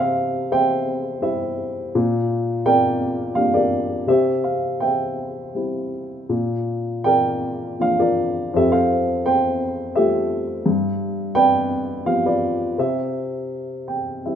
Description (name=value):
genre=classical, lyrical solo piano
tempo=78-88 BPM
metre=3/4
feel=rubato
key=unclear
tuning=A4 = 440 Hz
part: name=dark baby grand piano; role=solo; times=0.0-14.4 s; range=F2 to G5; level=-19 LUFS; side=equal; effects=none
room=moderate recital hall reverb, RT60 1.5 s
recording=minimal, uncompressed stereo recording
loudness=-18 LUFS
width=side -8 dB against mid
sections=0.0-14.4 A section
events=grand piano fill 13.5-14.4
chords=0.0 C; 1.9 Gm/Bb; 4.1 C; 6.3 Bb; 8.5 Fadd9; 10.6 G7; 12.8 C